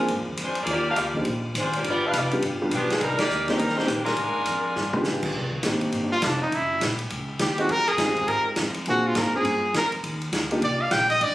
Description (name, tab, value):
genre	jazz, big band swing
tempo	205 BPM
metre	4/4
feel	swing 62% on 8ths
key	C minor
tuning	A4 = 439 Hz
part	bright saxophone section	melody	0.0-5.0 s	Eb3 to F5	-25 LUFS	left 1 dB	none
part	warm baby grand piano	accompaniment	0.0-10.6 s	F3 to Bb4	-28 LUFS	equal	none
part	upright bass	bass	0.0-11.3 s	F1 to Bb2	-32 LUFS	equal	none
part	vintage drum kit	drums	0.1-11.3 s	crash cymbal, hi-hat, kick drum, ride cymbal, snare drum, toms	-29 LUFS	equal	none
part	bright trumpet	melody	6.1-11.3 s	D4 to G5	-23 LUFS	equal	none
room	moderate concert hall reverb, RT60 2.4 s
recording	recorded on a phone in the room, studio reverb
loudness	-22 LUFS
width	side -16 dB against mid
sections	0.0-5.4 A section; 5.4-11.3 B section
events	band accent 3.2; drum fill 4.8; trumpet solo 5.4-11.3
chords	0.0 Bb7; 0.7 Ebmaj9; 1.8 G7; 3.0 Cm9; 4.2 Ddim; 4.8 G7b9; 5.4 Cm9; 6.5 F#7; 7.7 Fm9; 8.9 Bb7; 10.0 Ebmaj7(no3)